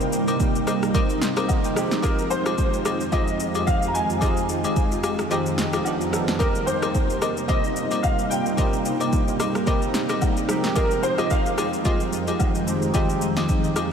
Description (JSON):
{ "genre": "amapiano", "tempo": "110 BPM", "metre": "4/4", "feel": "swing 55% on 16ths", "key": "F minor", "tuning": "A4 = 441 Hz", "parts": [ { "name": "warm grand piano", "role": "melody", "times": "0.0-13.9 s", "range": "Bb4 to Bb5", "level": "-29 LUFS", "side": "equal", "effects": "ensemble chorus, ping-pong delay" }, { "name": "bell-like tine electric piano", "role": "accompaniment", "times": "0.0-13.9 s", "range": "F3 to G5", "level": "-27 LUFS", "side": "right 4 dB", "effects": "analog chorus" }, { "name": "granular cloud pad", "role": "sustained chords", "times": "0.0-13.9 s", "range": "F2 to G5", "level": "-27 LUFS", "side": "left 1 dB", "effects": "built-in reverb, lush chorus" }, { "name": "analog pluck", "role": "stabs", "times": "0.0-13.9 s", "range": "Eb4 to Eb5", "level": "-31 LUFS", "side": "left 2 dB", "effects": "chorus, ping-pong delay" }, { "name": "deep house drum kit", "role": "drums", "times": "0.0-13.9 s", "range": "kick drum, rim click, shaker, snare drum", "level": "-25 LUFS", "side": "equal", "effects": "overdrive" }, { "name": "agogo bells and woodblock", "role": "percussion", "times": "0.3-13.9 s", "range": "none", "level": "-32 LUFS", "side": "left 6 dB", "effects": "none" } ], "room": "wet huge ambient reverb, RT60 7.6 s", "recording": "dreamy mix soaked in reverb", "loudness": "-20 LUFS", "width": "side -7 dB against mid", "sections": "0.0-13.9 A section", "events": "kick muted 5.3-6.4", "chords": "0.0 Cm7; 1.8 Fm9; 5.9 G7b13; 6.4 Cm7; 10.5 Fm9" }